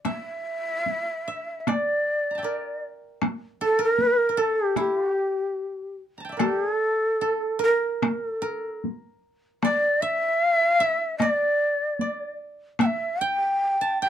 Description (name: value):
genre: japanese traditional, Japanese chamber music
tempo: 70-80 BPM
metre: 2/4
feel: rubato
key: G kumoi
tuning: A4 = 440 Hz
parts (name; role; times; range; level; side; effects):
- koto; second line; 0.0-14.1 s; G4 to Bb5; -31 LUFS; right 4 dB; none
- breathy mellow shakuhachi; melody; 0.1-14.1 s; G4 to G5; -23 LUFS; equal; none
- taiko ensemble; percussion; 0.1-13.0 s; none; -24 LUFS; left 1 dB; none
room: light reverb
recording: dark, warm production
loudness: -22 LUFS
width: side -10 dB against mid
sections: 0.0-6.4 A section; 6.4-14.1 B section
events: none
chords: none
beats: | 0.05 0.87 | 1.67 2.46 | 3.22 3.98 | 4.76 5.57 | 6.40 7.22 | 8.03 8.84 | 9.64 10.42 | 11.21 12.00 | 12.81 13.62